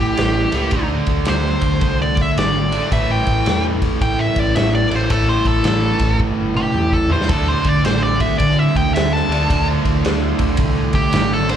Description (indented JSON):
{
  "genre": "blues rock power trio and southern rock",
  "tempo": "109 BPM",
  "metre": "4/4",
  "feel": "swing 64% on 8ths",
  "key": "unclear",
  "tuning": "A4 = 440 Hz",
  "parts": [
    { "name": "nasal lead guitar with a parked wah", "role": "melody", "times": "0.0-11.6 s", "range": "G4 to A5", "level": "-21 LUFS", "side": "equal", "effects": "overdrive, slapback echo" },
    { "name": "distorted electric guitar", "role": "riff", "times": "0.0-11.6 s", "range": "A2 to D4", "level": "-20 LUFS", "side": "right 1 dB", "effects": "distortion" },
    { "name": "overdriven picked electric bass", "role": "bass", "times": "0.0-11.5 s", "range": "E1 to D3", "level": "-21 LUFS", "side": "equal", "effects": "none" },
    { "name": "raw garage drum kit", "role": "drums", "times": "0.2-11.6 s", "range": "kick drum, ride cymbal, snare drum, toms", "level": "-20 LUFS", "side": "equal", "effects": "none" },
    { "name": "overdriven tonewheel organ", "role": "sustained chords", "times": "7.0-11.6 s", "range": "G3 to C#5", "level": "-33 LUFS", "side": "right 3 dB", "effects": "none" }
  ],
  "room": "small room ambience",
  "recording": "live gig heard through the venue's PA, club reverb",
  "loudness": "-15 LUFS",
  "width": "side -9 dB against mid",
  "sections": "0.0-11.6 A section",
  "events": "lead electric guitar solo 0.0-11.6; drum fill 6.2-7.3",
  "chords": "0.0 A5; 0.7 D5; 2.9 A5; 7.3 Dm9"
}